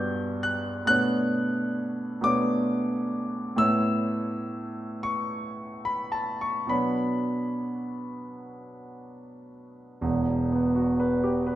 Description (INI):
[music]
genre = classical, impressionist solo piano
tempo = 34-46 BPM (dotted quarters)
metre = 6/8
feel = rubato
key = B minor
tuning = A4 = 440 Hz
[part]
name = warm grand piano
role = solo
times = 0.0-11.6 s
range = E1 to G6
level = -25 LUFS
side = equal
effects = none
[sound]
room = wet recital hall reverb, RT60 1.6 s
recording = nothing above 11.0 kHz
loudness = -24 LUFS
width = side -13 dB against mid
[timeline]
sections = 0.0-10.0 A section; 10.0-11.6 B section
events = none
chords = 0.0 Gmaj7; 0.9 Bm9; 3.6 Aadd9; 6.7 Bmadd9; 10.0 Emadd9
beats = | 0.90 2.27 | 3.61 5.07 | 6.72 8.42 | 10.04 11.47